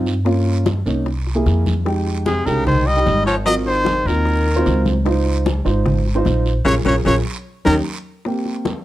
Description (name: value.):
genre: Afro-Cuban jazz.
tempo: 150 BPM.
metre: 4/4.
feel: straight.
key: Ab major.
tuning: A4 = 435 Hz.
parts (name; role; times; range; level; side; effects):
dark upright piano; accompaniment; 0.0-8.7 s; G3 to C5; -22 LUFS; right 2 dB; none.
upright bass; bass; 0.0-7.8 s; Ab1 to G2; -19 LUFS; equal; none.
bongos; percussion; 0.1-8.8 s; none; -26 LUFS; left 6 dB; none.
guiro; percussion; 0.1-8.8 s; none; -36 LUFS; right 5 dB; none.
congas; percussion; 0.3-8.8 s; none; -25 LUFS; left 1 dB; none.
clear trumpet; melody; 2.3-7.7 s; Ab4 to Eb5; -20 LUFS; equal; plate reverb.
edgy baritone saxophone; second line; 2.3-7.8 s; C3 to G3; -23 LUFS; left 3 dB; none.
room: light reverb.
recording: dark, warm production.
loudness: -16 LUFS.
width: side -14 dB against mid.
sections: 0.0-8.3 A section.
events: band accent 6.7-8.3; drum fill 7.7-8.3.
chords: 0.3 Gm7b5; 1.1 C7b13; 1.9 Fm9; 3.5 Ab13; 5.1 Dbmaj7; 6.7 Bbm7; 7.5 Eb7; 8.3 Abmaj7 (rootless).